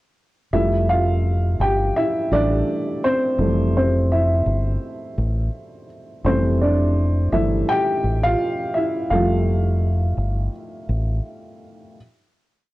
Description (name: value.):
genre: lo-fi hip hop.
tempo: 84 BPM.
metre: 4/4.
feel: swing 59% on 16ths.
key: F major.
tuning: A4 = 440 Hz.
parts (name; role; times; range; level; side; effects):
dark upright piano; accompaniment; 0.5-12.0 s; E3 to G5; -21 LUFS; equal; plate reverb.
deep dub fingered electric bass; bass; 0.5-11.2 s; F1 to A1; -20 LUFS; equal; none.
room: light reverb.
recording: worn, warbling old tape, cassette tape, warbly pitch drift.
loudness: -18 LUFS.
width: side -18 dB against mid.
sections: 0.5-12.0 A section.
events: upright piano solo 0.5-12.0.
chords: 0.5 Fmaj9.